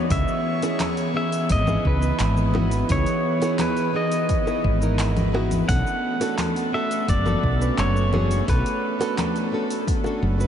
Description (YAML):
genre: sunset chillout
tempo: 86 BPM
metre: 4/4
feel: straight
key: unclear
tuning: A4 = 440 Hz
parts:
  - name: pedal steel guitar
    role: melody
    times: 0.0-9.1 s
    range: B4 to F#5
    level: -27 LUFS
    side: equal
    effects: tape echo
  - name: nylon-string guitar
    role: accompaniment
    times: 0.0-10.5 s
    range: B3 to B4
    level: -28 LUFS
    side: moving between left 3 dB and right 6 dB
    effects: auto-pan, tape echo
  - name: airy breathy pad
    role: sustained chords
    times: 0.0-10.5 s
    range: E3 to C#5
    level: -27 LUFS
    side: right 1 dB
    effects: chorus
  - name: woody fretless electric bass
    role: bass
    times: 0.1-10.5 s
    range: F#1 to C#2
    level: -22 LUFS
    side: equal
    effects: none
  - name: deep house drum kit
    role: drums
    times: 0.1-10.5 s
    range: congas, handclaps, hi-hat, shaker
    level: -30 LUFS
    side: left 2 dB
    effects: overdrive
  - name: electronic kick drum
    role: drums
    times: 0.1-10.0 s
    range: none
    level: -25 LUFS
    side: equal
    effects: overdrive
  - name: bongos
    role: percussion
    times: 0.6-10.2 s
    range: none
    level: -36 LUFS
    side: right 2 dB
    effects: none
room: moderate huge ambient reverb, RT60 7.4 s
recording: dreamy mix soaked in reverb, nothing above 10.9 kHz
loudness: -20 LUFS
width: side -9 dB against mid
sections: 0.0-10.5 A section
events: none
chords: 0.0 C#m9; 5.7 Bm9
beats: | 0.11 0.80 1.50 2.20 | 2.90 3.59 4.29 4.99 | 5.69 6.38 7.08 7.78 | 8.48 9.18 9.87